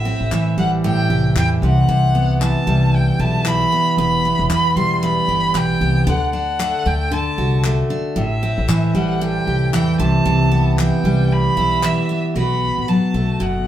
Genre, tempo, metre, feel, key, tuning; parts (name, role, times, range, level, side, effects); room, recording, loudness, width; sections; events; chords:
acoustic pop; 115 BPM; 4/4; swing 60% on 16ths; A4 = 440 Hz
rich violin; melody; 0.0-13.7 s; E5 to C6; -21 LUFS; right 1 dB
picked steel-string acoustic guitar; accompaniment; 0.0-13.7 s; E2 to G4; -19 LUFS; right 1 dB
upright bass; bass; 0.0-13.7 s; E1 to A2; -19 LUFS; equal
group handclap; percussion; 0.3-12.0 s; -29 LUFS; left 4 dB
moderate studio reverb, RT60 0.8 s; band playing live in one room; -15 LUFS; side -11 dB against mid
0.0-12.4 A section; 12.4-13.7 B section
0.0 Am7; 1.6 Cmaj7; 4.0 Em; 6.1 D; 8.2 Am7; 10.0 Cmaj7; 12.4 B5